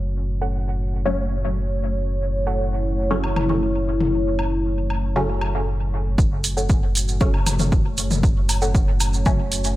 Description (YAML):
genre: dub techno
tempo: 117 BPM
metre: 4/4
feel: straight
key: F# minor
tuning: A4 = 439 Hz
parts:
  - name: dark analog pad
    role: sustained chords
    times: 0.0-9.8 s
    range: A3 to C#5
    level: -27 LUFS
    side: left 1 dB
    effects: chorus, phaser, sidechain pumping
  - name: soft dub sub bass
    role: bass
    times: 0.0-9.8 s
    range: F#1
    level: -24 LUFS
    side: equal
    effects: sidechain pumping
  - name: warbly dusty pluck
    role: riff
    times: 0.4-2.6, 6.6-8.7 s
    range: A4 to F#5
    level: -30 LUFS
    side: right 1 dB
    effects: chorus, sidechain pumping, dub echo
  - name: filtered dub chord stab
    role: stabs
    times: 1.1-9.4 s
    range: C#3 to C#4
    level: -27 LUFS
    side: left 1 dB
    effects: chorus, phaser, sidechain pumping, dub echo
  - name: electronic woodblock and toms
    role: percussion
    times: 3.2-9.1 s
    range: none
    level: -27 LUFS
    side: left 2 dB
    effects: overdrive, sidechain pumping on perc, sidechain pumping on toms, dub echo
  - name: electronic kick drum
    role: drums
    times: 6.2-9.4 s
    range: none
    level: -20 LUFS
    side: equal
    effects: none
  - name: maracas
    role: percussion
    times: 6.2-9.7 s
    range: none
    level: -27 LUFS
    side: right 4 dB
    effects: none
  - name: electronic hi-hat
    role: drums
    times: 6.4-9.7 s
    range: none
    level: -27 LUFS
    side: right 1 dB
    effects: none
room: light reverb, digital ambience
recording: none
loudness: -19 LUFS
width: side -16 dB against mid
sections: 0.0-6.2 A section; 6.2-9.8 B section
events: none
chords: 0.0 F#m